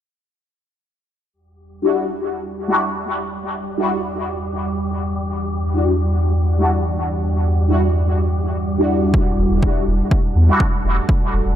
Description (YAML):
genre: dub techno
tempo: 123 BPM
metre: 4/4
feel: straight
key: E minor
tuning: A4 = 440 Hz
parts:
  - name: dark analog pad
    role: sustained chords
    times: 1.3-11.6 s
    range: E2 to F#5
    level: -21 LUFS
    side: equal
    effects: wide subtle chorus, sidechain pumping
  - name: wind-like tuned noise texture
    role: texture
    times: 1.9-11.6 s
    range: G3 to G4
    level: -28 LUFS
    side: right 1 dB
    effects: built-in reverb, sidechain pumping
  - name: resonant sweep polysynth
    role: stabs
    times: 1.8-10.6 s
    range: G3 to F#4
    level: -21 LUFS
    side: left 1 dB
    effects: chorus, phaser, sidechain pumping, dub echo
  - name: electronic kick drum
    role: drums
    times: 9.1-11.2 s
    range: none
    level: -17 LUFS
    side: equal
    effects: overdrive
  - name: warm sub bass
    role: bass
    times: 9.4-11.6 s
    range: E1 to E2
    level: -16 LUFS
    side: equal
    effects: sidechain pumping
room: light reverb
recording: none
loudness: -16 LUFS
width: side -10 dB against mid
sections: 1.3-11.6 A section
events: filter sweep on analog polysynth 1.3-11.6; filter sweep on analog synth pad 1.3-11.6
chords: 1.3 Em9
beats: | 1.33 1.82 2.31 2.80 | 3.28 3.77 4.26 4.75 | 5.24 5.72 6.21 6.70 | 7.19 7.67 8.16 8.65 | 9.14 9.63 10.11 10.60 | 11.09